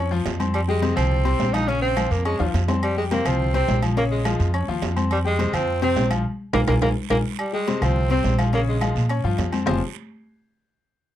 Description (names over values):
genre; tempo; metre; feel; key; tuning
latin, salsa; 210 BPM; 4/4; straight; F minor; A4 = 440 Hz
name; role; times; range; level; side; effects
bright upright piano; accompaniment; 0.0-9.8 s; C3 to Db6; -26 LUFS; left 7 dB; none
upright bass; bass; 0.0-9.8 s; F1 to Bb2; -23 LUFS; right 1 dB; none
congas; percussion; 0.1-9.7 s; none; -30 LUFS; left 1 dB; none
guiro; percussion; 0.3-9.7 s; none; -39 LUFS; right 22 dB; none
timbales and agogo bells; percussion; 0.3-9.7 s; none; -31 LUFS; right 6 dB; none
clear tenor saxophone; melody; 0.5-9.1 s; G3 to Eb4; -24 LUFS; right 1 dB; none
claves; percussion; 0.5-9.7 s; none; -36 LUFS; left 21 dB; none
room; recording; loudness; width
little or no reverb; dry, close 1970s-style studio recording; -19 LUFS; side -12 dB against mid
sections
0.0-7.4 A section; 7.4-9.7 B section; 9.7-10.8 C section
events
drum fill 2.4-2.8, 6.2-7.4; band accent 6.2-7.4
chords
0.0 Bbm (rootless); 0.5 Fmadd9; 1.7 Bbm7; 2.8 Fsus2; 4.0 Bbm7; 5.1 Fmadd9; 6.2 Bb5; 7.4 Fmadd9; 8.5 Bbm7; 9.7 Fmadd9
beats
0.26 | 0.54 0.83 1.11 1.40 | 1.68 1.97 2.25 2.54 | 2.82 3.11 3.39 3.68 | 3.96 4.25 4.54 4.82 | 5.11 5.39 5.68 5.96 | 6.25 6.53 6.82 7.10 | 7.39 7.67 7.96 8.24 | 8.53 8.81 9.10 9.38 | 9.67